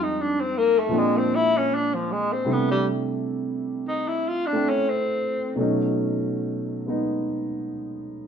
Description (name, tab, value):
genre	jazz ballad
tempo	77 BPM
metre	4/4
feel	swing 67% on 8ths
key	unclear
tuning	A4 = 436 Hz
part	breathy tenor saxophone	melody	0.0-5.6 s	F3 to F4	-22 LUFS	left 2 dB	none
part	warm grand piano	accompaniment	0.0-8.3 s	F2 to E4	-25 LUFS	right 1 dB	none
room	wet studio reverb, RT60 0.7 s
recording	band playing live in one room, nothing above 10.4 kHz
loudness	-22 LUFS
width	side -7 dB against mid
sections	0.0-8.3 A section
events	tenor saxophone solo 0.0-8.3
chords	0.0 Fm7; 0.9 Bb9; 2.5 C6; 5.6 B9